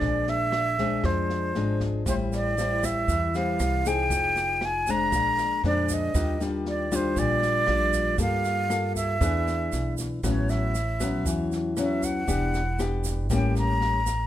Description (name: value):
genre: bossa nova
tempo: 118 BPM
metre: 4/4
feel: straight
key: A major from 10.2 s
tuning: A4 = 445 Hz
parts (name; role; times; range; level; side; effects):
- breathy concert flute; melody; 0.0-14.3 s; C5 to Bb5; -26 LUFS; right 1 dB; none
- nylon-string guitar; accompaniment; 0.0-14.3 s; A2 to A4; -28 LUFS; left 3 dB; none
- upright bass; bass; 0.0-14.3 s; E1 to G2; -29 LUFS; right 1 dB; none
- open jazz drum kit; drums; 0.0-14.1 s; kick drum, rim click, snare drum; -34 LUFS; equal; none
- tube shaker; percussion; 2.1-14.3 s; none; -39 LUFS; right 9 dB; none
room: light reverb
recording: none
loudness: -23 LUFS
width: side -12 dB against mid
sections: 0.0-10.2 A section; 10.2-14.3 B section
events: flute solo 10.2-14.3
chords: 0.0 Bb9; 2.1 Am7; 4.1 Fm7; 5.1 Bb9; 6.2 Ebmaj9; 8.2 Gm9; 9.2 E7; 10.2 A69; 12.3 Em7; 13.3 A7b9